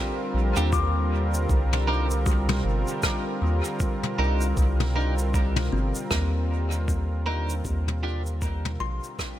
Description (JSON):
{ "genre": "ambient dub", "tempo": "78 BPM", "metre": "4/4", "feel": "swing 59% on 16ths", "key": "C minor", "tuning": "A4 = 445 Hz", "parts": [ { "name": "warm analog pad", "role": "sustained chords", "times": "0.0-9.4 s", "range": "D3 to Bb4", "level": "-30 LUFS", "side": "equal", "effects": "chorus" }, { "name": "kalimba", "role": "arpeggios", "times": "0.0-9.4 s", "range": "C4 to Eb6", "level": "-36 LUFS", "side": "left 6 dB", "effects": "dub echo" }, { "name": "soft dub sub bass", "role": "bass", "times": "0.3-9.0 s", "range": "G1 to Eb2", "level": "-24 LUFS", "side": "equal", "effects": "none" }, { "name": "clean electric guitar", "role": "stabs", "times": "0.6-8.2 s", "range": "D4 to Bb4", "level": "-34 LUFS", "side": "right 2 dB", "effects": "wide subtle chorus, dub echo" }, { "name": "jazz brush drum kit", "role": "drums", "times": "0.6-9.4 s", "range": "rim click, shaker, toms", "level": "-32 LUFS", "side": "left 1 dB", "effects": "dub echo" }, { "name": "electronic kick drum", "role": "drums", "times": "0.7-9.4 s", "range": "none", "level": "-27 LUFS", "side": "equal", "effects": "overdrive" } ], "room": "little or no reverb", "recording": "none", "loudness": "-23 LUFS", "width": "side -13 dB against mid", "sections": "0.0-9.4 A section", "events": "fade-out 5.6-9.4", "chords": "0.0 Ebmaj9; 1.5 Cm9; 7.7 Ebmaj9", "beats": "0.73 | 1.50 2.27 3.04 3.80 | 4.57 5.34 6.11 6.88 | 7.65 8.42 9.19" }